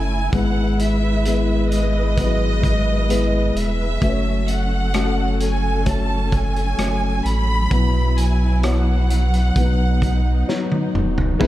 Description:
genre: pop ballad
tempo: 65 BPM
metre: 4/4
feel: straight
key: E major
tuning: A4 = 440 Hz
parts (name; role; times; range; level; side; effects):
- clear studio violin section; melody; 0.0-11.0 s; D#5 to B5; -26 LUFS; right 1 dB; none
- felt-muted upright piano; accompaniment; 0.0-11.5 s; G#2 to C#5; -23 LUFS; left 4 dB; none
- warm studio string section; sustained chords; 0.0-11.5 s; E3 to D#5; -28 LUFS; right 1 dB; none
- sub bass with octave; bass; 0.0-11.5 s; D#1 to B1; -20 LUFS; equal; none
- loose indie drum kit; drums; 0.3-11.5 s; crash cymbal, hi-hat, kick drum, rim click, snare drum, toms; -24 LUFS; equal; none
- dark symphonic cello section; second line; 11.4-11.5 s; B3; -25 LUFS; right 3 dB; none
- direct-recorded clean electric guitar; arpeggios; 11.4-11.5 s; E3; -24 LUFS; right 9 dB; none
room: small room ambience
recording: dark, warm production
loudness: -17 LUFS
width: side -14 dB against mid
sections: 0.0-11.4 A section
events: drum fill 10.5-11.4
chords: 0.3 E/G#; 4.0 F#m; 7.7 Bsus4; 9.6 B

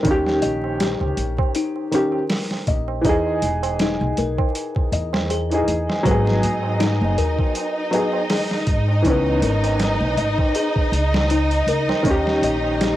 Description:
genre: trip hop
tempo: 80 BPM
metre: 4/4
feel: swing 56% on 16ths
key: G# minor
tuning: A4 = 439 Hz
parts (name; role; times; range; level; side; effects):
- warm upright piano; accompaniment; 0.0-13.0 s; D#3 to G#4; -22 LUFS; equal; tremolo, cassette tape, tape echo
- music box; arpeggios; 0.0-13.0 s; D#4 to D#5; -27 LUFS; left 6 dB; cassette tape, analog delay
- boom bap sampler-style drum kit; drums; 0.0-13.0 s; hi-hat, kick drum, snare drum; -23 LUFS; equal; overdrive
- tabla; percussion; 0.0-13.0 s; none; -33 LUFS; right 12 dB; none
- upright bass; bass; 0.1-13.0 s; E1 to G#2; -23 LUFS; equal; none
- dark symphonic violin section; sustained chords; 6.1-13.0 s; D#4 to D#5; -23 LUFS; right 1 dB; cassette tape
room: light reverb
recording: home recording on cassette, vinyl crackle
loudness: -18 LUFS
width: side -14 dB against mid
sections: 0.0-13.0 A section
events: none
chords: 0.1 D#7; 3.1 Emaj7; 6.1 G#m7; 9.1 C#m7; 12.1 D#7

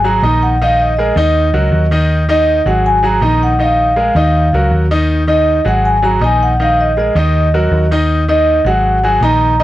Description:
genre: latin, salsa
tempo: 160 BPM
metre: 4/4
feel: straight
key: unclear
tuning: A4 = 440 Hz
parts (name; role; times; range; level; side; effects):
- vibraphone with soft mallets; melody; 0.0-9.6 s; Eb5 to Bb5; -14 LUFS; right 1 dB; none
- clear baby grand piano; accompaniment; 0.0-9.6 s; Eb3 to Eb5; -16 LUFS; left 1 dB; none
- hollow-body short-scale fingered electric bass; bass; 0.0-9.6 s; Ab1 to Eb2; -14 LUFS; equal; none
room: little or no reverb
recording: dry, gritty hardware recording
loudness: -10 LUFS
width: side -14 dB against mid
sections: 0.0-9.6 A section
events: none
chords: 0.0 Absus2; 0.6 Bb7sus4; 1.4 Ebm; 2.9 Absus2; 3.6 Bb7sus4; 4.3 Ebm; 5.8 Absus2; 6.6 Bb7sus4; 7.3 Absus2

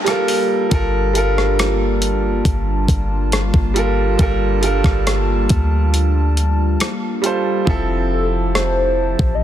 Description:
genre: contemporary R&B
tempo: 69 BPM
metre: 4/4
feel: straight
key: G dorian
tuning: A4 = 441 Hz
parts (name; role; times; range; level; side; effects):
- clear grand piano; accompaniment; 0.0-9.4 s; F3 to C5; -20 LUFS; right 2 dB; none
- hollow soft pad; sustained chords; 0.0-9.4 s; F3 to A5; -24 LUFS; left 2 dB; chorus
- gated 80s digital drum machine; drums; 0.1-9.4 s; hi-hat, kick drum, rim click; -19 LUFS; equal; overdrive
- clean 808-style bass; bass; 0.7-9.4 s; F1 to D2; -18 LUFS; equal; none
- hollow clarinet-like synth lead; melody; 8.1-9.4 s; A4 to Eb5; -20 LUFS; left 1 dB; chorus, phaser
room: light reverb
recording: dense, heavily limited modern master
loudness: -15 LUFS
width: side -11 dB against mid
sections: 0.7-7.7 A section; 7.7-9.4 B section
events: break 0.0-0.7; hi-hats muted 7.7-9.4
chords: 0.0 Gm9; 7.7 Fmaj7

